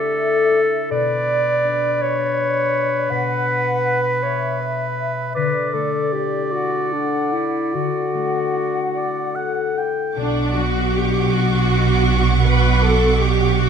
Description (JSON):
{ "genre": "cinematic", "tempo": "48-55 BPM (dotted quarters)", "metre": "6/8", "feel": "rubato", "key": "B minor", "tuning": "A4 = 440 Hz", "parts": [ { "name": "clear clarinet", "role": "second line", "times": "0.0-9.8 s", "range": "D4 to D5", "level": "-21 LUFS", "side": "equal", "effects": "none" }, { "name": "flute section", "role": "second line", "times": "0.0-9.8 s", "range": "D5 to F#5", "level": "-28 LUFS", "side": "right 1 dB", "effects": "none" }, { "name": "warm oboe", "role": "second line", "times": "0.0-10.2 s", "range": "B4 to G5", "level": "-26 LUFS", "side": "right 3 dB", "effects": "none" }, { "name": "concert harp", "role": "arpeggios", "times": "0.0-13.7 s", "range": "B2 to C#6", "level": "-24 LUFS", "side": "left 8 dB", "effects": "none" }, { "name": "warm studio violin section", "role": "melody", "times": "10.2-13.7 s", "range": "D6", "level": "-29 LUFS", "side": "right 1 dB", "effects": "none" }, { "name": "warm symphonic violin section", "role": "second line", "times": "10.2-13.7 s", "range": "F#5 to C#6", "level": "-25 LUFS", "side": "right 1 dB", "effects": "none" }, { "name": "rich symphonic viola section", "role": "accompaniment", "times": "10.2-13.7 s", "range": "D4 to B4", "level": "-21 LUFS", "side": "right 1 dB", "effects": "none" }, { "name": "clear symphonic cello section", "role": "bass", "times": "10.2-13.7 s", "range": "B2", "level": "-22 LUFS", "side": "right 7 dB", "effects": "none" }, { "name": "rich symphonic double bass section", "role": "bass", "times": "10.2-13.7 s", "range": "B1", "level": "-19 LUFS", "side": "right 4 dB", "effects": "none" } ], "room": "moderate scoring stage reverb, RT60 2.0 s", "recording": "none", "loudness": "-17 LUFS", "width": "side -7 dB against mid", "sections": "0.0-10.2 A section; 10.2-13.7 A section", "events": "none", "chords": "0.0 Dsus2; 0.9 Bmadd9; 5.4 Dadd9; 10.2 Bmadd9" }